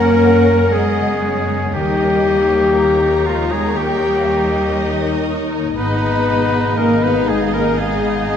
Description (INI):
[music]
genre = cinematic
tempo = 60 BPM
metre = 4/4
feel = rubato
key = unclear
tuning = A4 = 440 Hz
[part]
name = dark studio violin section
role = melody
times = 0.0-8.4 s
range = C#5 to F#5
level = -28 LUFS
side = left 5 dB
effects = none
[part]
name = clear clarinet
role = second line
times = 0.0-8.4 s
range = G#3 to D#4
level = -27 LUFS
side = left 2 dB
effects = none
[part]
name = clear oboe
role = second line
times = 0.0-8.4 s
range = E#4 to B4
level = -26 LUFS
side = right 2 dB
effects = none
[part]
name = mellow hollow silver concert flute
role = second line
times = 0.0-8.4 s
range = E#5 to B5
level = -26 LUFS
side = left 1 dB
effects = none
[part]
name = warm studio violin section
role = second line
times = 0.0-8.4 s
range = C#5 to A#5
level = -27 LUFS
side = left 3 dB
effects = none
[part]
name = clear studio viola section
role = accompaniment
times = 0.0-8.4 s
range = C#4 to A#4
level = -25 LUFS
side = right 2 dB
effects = none
[part]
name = dark French horn section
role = sustained chords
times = 0.0-8.4 s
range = E#4 to B4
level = -18 LUFS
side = left 4 dB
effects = none
[part]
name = concert harp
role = arpeggios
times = 0.0-8.4 s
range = F#2 to C#6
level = -26 LUFS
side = left 7 dB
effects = none
[part]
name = clear studio cello section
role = bass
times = 0.0-8.4 s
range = E#3 to B3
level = -21 LUFS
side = right 3 dB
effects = none
[part]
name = warm studio double bass section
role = bass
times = 0.0-8.4 s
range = G#1 to F#2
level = -23 LUFS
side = right 1 dB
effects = none
[sound]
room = wet scoring stage reverb, RT60 1.7 s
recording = dark, warm production, vinyl crackle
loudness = -14 LUFS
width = side -8 dB against mid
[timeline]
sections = 0.0-8.4 A section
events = none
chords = 0.0 F#; 1.7 D#7; 5.8 G#m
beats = 0.73 | 1.74 2.76 3.77 4.77 | 5.76 6.77 7.79